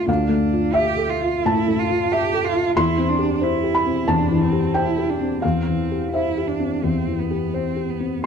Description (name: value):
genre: neoclassical piano and strings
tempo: 88 BPM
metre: 4/4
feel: uneven beats, rubato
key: unclear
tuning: A4 = 441 Hz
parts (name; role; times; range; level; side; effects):
- rich cello; second line; 0.0-8.2 s; B3 to G4; -24 LUFS; right 8 dB; slapback echo
- felt-muted upright piano; accompaniment; 0.0-8.3 s; D2 to C6; -20 LUFS; left 2 dB; none
room: light reverb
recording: dark, warm production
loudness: -18 LUFS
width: side -7 dB against mid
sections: 0.0-8.3 A section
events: none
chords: 0.0 Dmadd9; 2.8 C/E